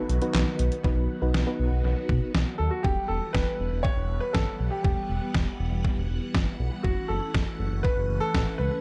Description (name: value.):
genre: synth-pop.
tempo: 120 BPM.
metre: 4/4.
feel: straight.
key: E dorian.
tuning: A4 = 439 Hz.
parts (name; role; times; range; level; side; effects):
clear concert grand piano; melody; 0.0-8.8 s; F#4 to C#5; -33 LUFS; equal; analog delay.
FM electric piano with tremolo; accompaniment; 0.0-2.3 s; B3 to B4; -32 LUFS; equal; none.
phased string machine; sustained chords; 0.0-8.8 s; D#3 to F#5; -38 LUFS; equal; ensemble chorus, phaser.
smooth gliding synth bass; bass; 0.1-8.7 s; E1 to B2; -30 LUFS; equal; none.
detuned 8-bit digital drum machine; drums; 0.1-8.5 s; handclaps, hi-hat, kick drum, snare drum; -29 LUFS; equal; analog delay.
room: light reverb.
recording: echo-heavy mix, nothing above 10.7 kHz.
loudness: -27 LUFS.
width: mono.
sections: 0.8-2.8 A section; 2.8-8.8 B section.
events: none.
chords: 0.0 B; 2.8 Emadd9; 6.8 F#m7.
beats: 0.34 | 0.84 1.34 1.84 2.34 | 2.84 3.34 3.84 4.34 | 4.84 5.34 5.84 6.34 | 6.84 7.34 7.84 8.34.